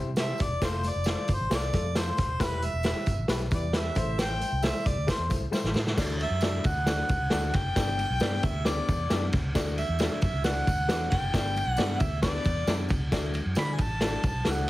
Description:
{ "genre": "uptempo 1960s-style soul", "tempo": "134 BPM", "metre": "4/4", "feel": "straight", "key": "D major from 6.0 s", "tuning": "A4 = 440 Hz", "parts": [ { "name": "clear upright piano", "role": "accompaniment", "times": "0.0-14.7 s", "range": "G3 to D5", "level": "-35 LUFS", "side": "left 4 dB", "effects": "plate reverb" }, { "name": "vintage muted fingered electric bass", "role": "bass", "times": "0.0-14.6 s", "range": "Eb1 to D3", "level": "-31 LUFS", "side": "equal", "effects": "tube saturation" }, { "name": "mellow harmonica", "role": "melody", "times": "0.2-14.7 s", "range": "B4 to B5", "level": "-31 LUFS", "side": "equal", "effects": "plate reverb" }, { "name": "vintage drum kit", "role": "drums", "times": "0.2-14.7 s", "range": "crash cymbal, hi-hat, kick drum, ride cymbal, snare drum", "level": "-28 LUFS", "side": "equal", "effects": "none" }, { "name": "congas", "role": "percussion", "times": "0.2-14.6 s", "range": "none", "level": "-43 LUFS", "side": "equal", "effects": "none" }, { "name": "tambourine", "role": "percussion", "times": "0.2-14.7 s", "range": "none", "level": "-45 LUFS", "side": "right 3 dB", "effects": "none" } ], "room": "studio reverb", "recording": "heavily compressed radio sound", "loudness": "-25 LUFS", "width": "side -16 dB against mid", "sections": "0.0-6.0 A section; 6.0-14.7 B section", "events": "harmonica solo 0.0-6.0; drum fill 5.5-6.0", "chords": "0.0 C; 0.6 F; 2.4 Em; 4.0 Am; 6.0 D; 7.8 G; 9.5 D; 11.3 G; 13.1 D" }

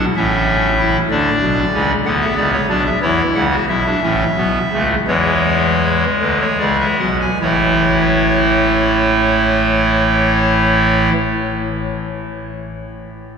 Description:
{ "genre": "classical, baroque-style 3-part fugue for pipe organ", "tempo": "48-64 BPM (dotted quarters)", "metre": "12/8", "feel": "straight", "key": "A major", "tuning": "A4 = 440 Hz", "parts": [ { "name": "pipe organ, clarinet reed", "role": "solo", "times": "0.0-11.1 s", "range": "A1 to G#5", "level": "-13 LUFS", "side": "equal", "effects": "none" } ], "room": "wet cathedral reverb, RT60 6.6 s", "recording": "heard from further back in the room", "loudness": "-13 LUFS", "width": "side -6 dB against mid", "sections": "0.0-7.4 A section; 7.4-12.4 B section", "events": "slowing down 0.5-7.4", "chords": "0.0 N.C.; 1.1 Bm; 3.0 A; 5.1 E7; 7.4 A" }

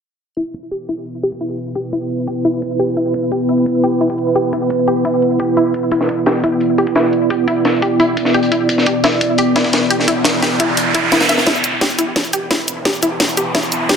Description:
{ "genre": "dark technical drum and bass", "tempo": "173 BPM", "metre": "4/4", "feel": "straight", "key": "E minor", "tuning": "A4 = 443 Hz", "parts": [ { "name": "deep dark ambient pad", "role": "sustained chords", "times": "1.1-14.0 s", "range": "B3 to D5", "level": "-17 LUFS", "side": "right 1 dB", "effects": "chorus, built-in reverb, sidechain pumping" }, { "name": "wide unison pluck", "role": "arpeggios", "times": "0.4-13.9 s", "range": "E4 to E5", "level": "-20 LUFS", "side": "left 1 dB", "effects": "sidechain pumping, digital delay" }, { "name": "drum and bass drum kit", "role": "drums", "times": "0.4-14.0 s", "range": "cabasa, hi-hat, snare drum", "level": "-18 LUFS", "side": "equal", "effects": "studio reverb" }, { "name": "electronic kick drum", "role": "drums", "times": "0.4-11.0 s", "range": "none", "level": "-27 LUFS", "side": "equal", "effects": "high-pass filter on kick, studio reverb" }, { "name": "crisp fusion drum kit", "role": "drums", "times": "5.9-11.5 s", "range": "hi-hat, snare drum", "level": "-19 LUFS", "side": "left 1 dB", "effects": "high-pass filter on hats, studio reverb, high-pass filter on snare, high-pass filter on room" }, { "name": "riser", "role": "sound effects", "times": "9.8-14.0 s", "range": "none", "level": "-21 LUFS", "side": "right 2 dB", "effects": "none" } ], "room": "moderate digital room reverb, RT60 1.2 s, digital ambience", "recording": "dense, heavily limited modern master, low-pass filter", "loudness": "-13 LUFS", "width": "side -6 dB against mid", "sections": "0.4-11.5 A section; 11.5-14.0 B section", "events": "filter sweep on synth arpeggio sound 0.4-11.5; filter sweep 0.4-11.5; riser 9.8-11.5, 11.5-14.0; kick drops out 11.1-11.5; build-up 11.5-14.0; drum fill 11.5-14.0", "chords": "0.4 E5" }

